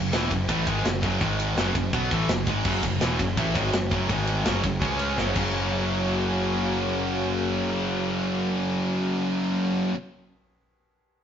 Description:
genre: heavy metal.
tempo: 166 BPM.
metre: 4/4.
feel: straight.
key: unclear.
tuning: A4 = 441 Hz.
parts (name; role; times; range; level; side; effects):
heavy high-gain guitar; riff; 0.0-9.9 s; E2 to F#4; -32 LUFS; equal; distortion.
high-gain distorted guitar; riff; 0.0-9.9 s; E2 to C#4; -29 LUFS; left 4 dB; distortion.
tight distorted guitar; riff; 0.0-9.9 s; E2 to C#4; -30 LUFS; right 5 dB; distortion.
fuzz picked electric bass; bass; 0.0-9.9 s; E1 to C#2; -29 LUFS; equal; overdrive.
tight metal drum kit; drums; 0.1-5.4 s; crash cymbal, kick drum, ride cymbal, snare drum; -28 LUFS; equal; none.
dark analog pad; sustained chords; 3.0-9.2 s; C#3 to C#5; -33 LUFS; equal; chorus.
room: light reverb.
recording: rough rehearsal-room recording, nothing above 7.6 kHz, faint mains hum.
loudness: -23 LUFS.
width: side -8 dB against mid.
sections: 0.0-5.5 A section; 5.5-8.4 B section.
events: drum fill 5.2-5.5.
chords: 0.0 F#m; 1.2 G#5; 1.6 F#m; 4.1 G#5; 4.5 F#m; 4.8 C#5; 5.2 F#m; 5.4 F#.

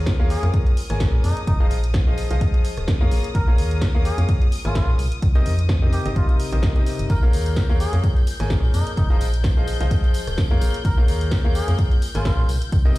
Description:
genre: piano house.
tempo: 128 BPM.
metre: 4/4.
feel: swing 55% on 16ths.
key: Bb dorian.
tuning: A4 = 440 Hz.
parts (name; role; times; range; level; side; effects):
clear symphonic string section; sustained chords; 0.0-13.0 s; Eb6 to G6; -36 LUFS; left 4 dB; sidechain pumping.
clear concert grand piano; riff; 0.0-13.0 s; C3 to Ab5; -28 LUFS; left 2 dB; sidechain pumping, ping-pong delay.
organ-like FM bass; bass; 0.0-13.0 s; Eb1 to Bb2; -22 LUFS; equal; sidechain pumping.
electronic kick drum; drums; 0.1-12.8 s; none; -19 LUFS; equal; none.
punchy analog drum machine; drums; 0.1-13.0 s; hi-hat, rim click, snare drum; -33 LUFS; right 1 dB; none.
trumpet with cup mute; melody; 0.3-12.4 s; Eb4 to Bb4; -34 LUFS; equal; ping-pong delay.
tambourine; percussion; 7.1-13.0 s; none; -42 LUFS; left 4 dB; none.
room: small room ambience.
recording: played on a big sound system in a bare room, stone room reverb.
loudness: -17 LUFS.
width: side -18 dB against mid.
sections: 0.0-13.0 A section.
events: none.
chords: 0.0 Bbm7; 1.5 Fm7; 3.1 Bbm7; 5.0 Cm7; 7.1 Bbm7; 9.0 Fm7; 10.6 Bbm7.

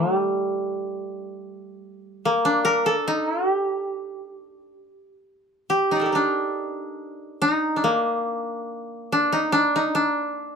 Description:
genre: japanese traditional, Japanese chamber music.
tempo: 67-74 BPM.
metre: 2/4.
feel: rubato.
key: D miyako bushi.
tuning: A4 = 440 Hz.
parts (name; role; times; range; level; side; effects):
koto; solo; 0.0-10.6 s; G3 to D5; -22 LUFS; equal; none.
room: moderate studio reverb, RT60 0.5 s.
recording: none.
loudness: -21 LUFS.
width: side -6 dB against mid.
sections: 0.0-10.6 A section.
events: none.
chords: none.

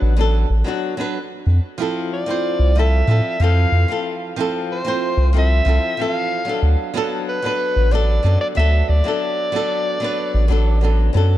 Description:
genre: sunset chillout.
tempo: 93 BPM.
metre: 4/4.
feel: straight.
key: unclear.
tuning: A4 = 442 Hz.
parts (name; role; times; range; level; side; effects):
flamenco guitar; accompaniment; 0.0-11.4 s; E3 to C5; -22 LUFS; equal; auto-pan, tape echo.
round analog bass; bass; 0.0-11.4 s; A1 to A2; -15 LUFS; equal; none.
warm soprano saxophone; melody; 2.1-11.1 s; B4 to F5; -23 LUFS; left 1 dB; tape echo.
room: light reverb.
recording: dark, warm production.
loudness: -16 LUFS.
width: side -13 dB against mid.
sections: 0.0-11.4 A section.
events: none.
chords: 0.0 D6; 1.5 Fmaj7; 6.6 D6.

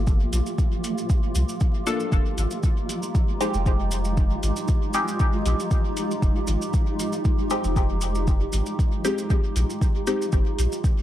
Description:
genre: dub techno.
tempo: 117 BPM.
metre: 4/4.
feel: swing 53% on 16ths.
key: unclear.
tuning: A4 = 440 Hz.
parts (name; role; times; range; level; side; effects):
granular cloud pad; sustained chords; 0.0-11.0 s; Ab3 to G4; -30 LUFS; right 1 dB; built-in reverb, sidechain pumping.
soft dub sub bass; bass; 0.0-10.7 s; F1 to C2; -24 LUFS; equal; sidechain pumping.
flickering grainy texture; texture; 0.0-10.3 s; F3 to F4; -36 LUFS; equal; built-in reverb, sidechain pumping.
electronic kick drum; drums; 0.1-10.9 s; none; -22 LUFS; equal; overdrive.
maracas; percussion; 0.1-11.0 s; none; -38 LUFS; right 2 dB; dub echo.
electronic hi-hat; drums; 0.3-10.7 s; none; -37 LUFS; left 3 dB; overdrive, dub echo.
filtered dub chord stab; stabs; 1.9-10.3 s; Ab3 to A4; -28 LUFS; left 2 dB; chorus, phaser, sidechain pumping, dub echo.
room: light reverb.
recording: echo-heavy mix, vinyl crackle.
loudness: -21 LUFS.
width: side -12 dB against mid.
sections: 0.0-10.3 A section.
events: none.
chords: 0.0 Gm9; 2.1 Fm9; 10.3 Gm9.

